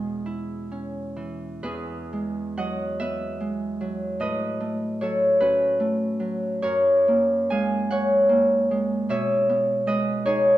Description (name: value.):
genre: classical, solo harp piece.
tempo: 42-52 BPM (dotted quarters).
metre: 6/8.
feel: rubato.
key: E major.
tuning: A4 = 441 Hz.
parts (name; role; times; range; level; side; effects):
Celtic harp; solo; 0.0-10.6 s; E2 to G#5; -21 LUFS; equal; none.
room: light reverb.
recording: dark, warm production.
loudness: -21 LUFS.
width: side -14 dB against mid.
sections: 0.0-1.6 A section; 1.6-10.6 B section.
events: none.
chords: 0.0 E6; 1.6 Eadd9; 4.2 A69; 6.6 F#add9; 9.1 B69.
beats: 0.26 | 1.62 2.99 | 4.21 5.40 | 6.61 7.88 | 9.08 10.24.